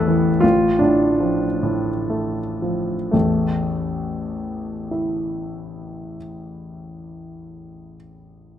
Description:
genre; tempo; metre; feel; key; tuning
classical, romantic character piece for solo piano; 52-90 BPM; 3/4; rubato; unclear; A4 = 439 Hz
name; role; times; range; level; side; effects
clear grand piano; solo; 0.0-8.6 s; A1 to C#5; -20 LUFS; equal; none
room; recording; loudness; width
moderate recital hall reverb, RT60 1.6 s; close, detailed microphones; -18 LUFS; side -10 dB against mid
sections
0.0-3.1 A section; 3.1-8.6 B section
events
slowing down 0.0-3.1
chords
0.4 Dm/A; 3.1 A5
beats
| 0.42 1.19 2.08 | 3.13 4.02 4.91 | 5.81 6.72 7.68

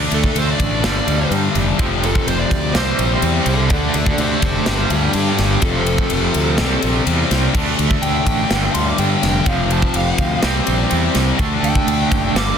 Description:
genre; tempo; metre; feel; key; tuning
hard rock; 125 BPM; 4/4; straight; D minor; A4 = 440 Hz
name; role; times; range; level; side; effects
sweeping resonant pad; sustained chords; 0.1-12.6 s; F3 to E5; -31 LUFS; equal; none
cranked stack guitar; riff; 0.0-12.6 s; F2 to D4; -22 LUFS; left 13 dB; overdrive
cranked stack guitar; riff; 0.0-12.6 s; F2 to D4; -23 LUFS; right 11 dB; overdrive, tremolo
scooped high-gain guitar; riff; 0.0-12.6 s; F2 to D4; -26 LUFS; left 1 dB; none
fuzz fingered electric bass; bass; 0.0-12.5 s; F1 to G2; -20 LUFS; equal; overdrive
dark smooth lead guitar; melody; 0.1-12.6 s; D4 to D6; -23 LUFS; right 2 dB; overdrive, slapback echo
tight metal drum kit; drums; 0.1-12.5 s; crash cymbal, kick drum, ride cymbal, snare drum; -20 LUFS; equal; none
room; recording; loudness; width
small room ambience; dense, heavily limited modern master; -14 LUFS; side -8 dB against mid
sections
0.0-12.6 A section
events
lead electric guitar solo 0.0-12.6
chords
0.0 D5; 0.8 G5; 1.8 F5; 2.8 C; 3.7 Dm; 4.7 G5; 5.6 F; 6.6 C; 7.5 D5; 8.5 G5; 9.5 F5; 10.4 C; 11.4 D5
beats
0.36 0.84 1.31 | 1.79 2.27 2.75 3.23 | 3.71 4.19 4.67 5.15 | 5.63 6.11 6.58 7.06 | 7.54 8.02 8.50 8.98 | 9.46 9.94 10.43 10.91 | 11.39 11.87 12.35

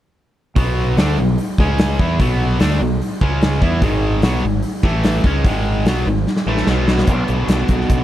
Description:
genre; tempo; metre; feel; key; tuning
classic rock; 147 BPM; 4/4; straight; B dorian; A4 = 440 Hz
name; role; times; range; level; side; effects
distorted electric guitar; riff; 0.6-8.0 s; G#2 to E4; -19 LUFS; equal; overdrive
growling fingered electric bass; bass; 0.6-8.0 s; G#1 to E2; -19 LUFS; equal; overdrive
huge arena drum kit; drums; 0.6-8.0 s; hi-hat, kick drum, snare drum; -18 LUFS; equal; none
room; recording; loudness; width
little or no reverb; none; -14 LUFS; side -13 dB against mid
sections
0.6-7.1 A section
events
drum fill 6.3-7.1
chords
0.6 Bm; 1.6 C#5; 2.0 Bm; 3.2 C#5; 3.6 E5; 3.8 G#5; 4.8 A5; 5.2 G#5; 6.7 B5; 7.1 Bm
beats
| 0.56 0.97 1.38 1.79 | 2.19 2.60 3.01 3.41 | 3.82 4.23 4.63 5.04 | 5.45 5.86 6.26 6.67 | 7.08 7.49 7.90

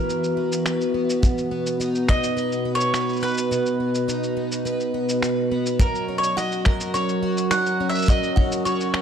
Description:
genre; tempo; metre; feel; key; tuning
folktronica; 105 BPM; 4/4; straight; F# mixolydian; A4 = 440 Hz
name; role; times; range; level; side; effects
bowl-back mandolin; melody; 0.0-9.0 s; A#4 to F#5; -26 LUFS; right 1 dB; tape echo
warbly tape-like pad; sustained chords; 0.0-9.0 s; B2 to F#5; -25 LUFS; right 1 dB; chorus, built-in reverb
picked plugged-in twelve-string acoustic guitar; arpeggios; 0.0-9.0 s; B2 to B4; -27 LUFS; equal; analog chorus, tape echo
electronic cabasa and finger snaps; drums; 0.1-9.0 s; none; -29 LUFS; equal; none
kick drum; drums; 1.2-2.2, 5.8-8.5 s; none; -20 LUFS; equal; none
buzzing kalimba; second line; 6.4-8.6 s; F#5 to C#6; -32 LUFS; right 2 dB; tape echo
room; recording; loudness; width
moderate lush hall reverb, RT60 1.7 s, small room ambience; dark, warm production; -20 LUFS; side -8 dB against mid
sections
0.0-5.8 A section; 5.8-9.0 B section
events
kick drops out 3.5-5.8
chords
0.0 Esus2; 1.2 B; 5.8 F#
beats
0.08 0.66 | 1.23 1.80 2.37 2.94 | 3.51 4.08 4.66 5.23 | 5.80 6.37 6.94 7.51 | 8.08 8.66

